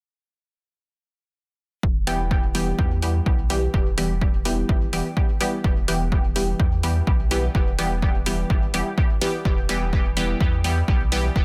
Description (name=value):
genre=dub techno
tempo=126 BPM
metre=4/4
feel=swing 56% on 16ths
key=E minor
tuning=A4 = 440 Hz
part: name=pure sine sub bass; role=bass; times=1.8-11.4 s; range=E1 to E2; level=-28 LUFS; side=equal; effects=tube saturation, sidechain pumping
part: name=electronic kick drum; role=drums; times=1.8-11.4 s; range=none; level=-24 LUFS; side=equal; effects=overdrive
part: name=filtered dub chord stab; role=stabs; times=2.1-11.3 s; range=E3 to G4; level=-28 LUFS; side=equal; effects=chorus, phaser, sidechain pumping, dub echo
part: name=electronic hi-hat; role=drums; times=2.1-11.2 s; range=none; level=-33 LUFS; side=equal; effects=overdrive
room=digital ambience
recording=dense, heavily limited modern master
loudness=-22 LUFS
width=mono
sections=1.8-11.4 A section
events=none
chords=1.8 Em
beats=| 1.83 2.31 2.79 3.26 | 3.74 4.21 4.69 5.17 | 5.64 6.12 6.60 7.07 | 7.55 8.02 8.50 8.98 | 9.45 9.93 10.40 10.88 | 11.36